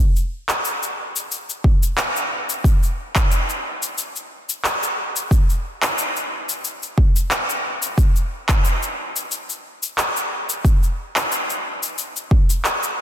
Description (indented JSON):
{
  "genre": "downtempo",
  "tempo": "90 BPM",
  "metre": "4/4",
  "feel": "swing 54% on 16ths",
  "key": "none",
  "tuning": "none",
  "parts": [
    { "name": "electronic shaker and handclaps", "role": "drums", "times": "0.2-12.9 s", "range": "none", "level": "-22 LUFS", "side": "equal", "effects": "none" },
    { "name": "electronic kick drum", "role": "drums", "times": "1.6-12.5 s", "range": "none", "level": "-16 LUFS", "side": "equal", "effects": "none" }
  ],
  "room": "light reverb",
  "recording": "dense, heavily limited modern master",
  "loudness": "-18 LUFS",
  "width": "side -11 dB against mid",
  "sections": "0.0-13.0 A section",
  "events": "none",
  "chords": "none"
}